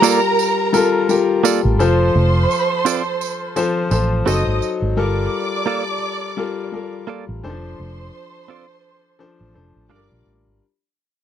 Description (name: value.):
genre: lush 1970s-style soul.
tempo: 85 BPM.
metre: 4/4.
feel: swing 58% on 16ths.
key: G minor.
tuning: A4 = 439 Hz.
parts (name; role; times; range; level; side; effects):
warm studio string section; second line; 0.0-10.2 s; Bb4 to D#6; -22 LUFS; right 3 dB; none.
clear concert grand piano; accompaniment; 0.0-10.6 s; Eb3 to C5; -20 LUFS; left 5 dB; none.
direct-recorded clean electric guitar; riff; 0.0-10.1 s; Bb3 to D#5; -18 LUFS; right 8 dB; none.
tambourine; percussion; 0.0-4.8 s; none; -27 LUFS; right 22 dB; none.
vintage muted fingered electric bass; bass; 1.6-10.6 s; F1 to Bb1; -19 LUFS; right 1 dB; none.
room: little or no reverb.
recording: dry, close 1970s-style studio recording.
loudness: -16 LUFS.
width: side -10 dB against mid.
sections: 0.0-10.6 A section.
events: fade-out 0.0-10.6.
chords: 0.0 Gm9; 1.8 Dm7/F (rootless); 4.3 F#dim7; 5.0 Gm9; 7.4 Dm7/F; 9.9 Gm7.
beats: 0.03 0.74 1.44 | 2.15 2.85 3.56 4.26 | 4.97 5.67 6.38 7.08 | 7.79 8.49 9.20 9.90.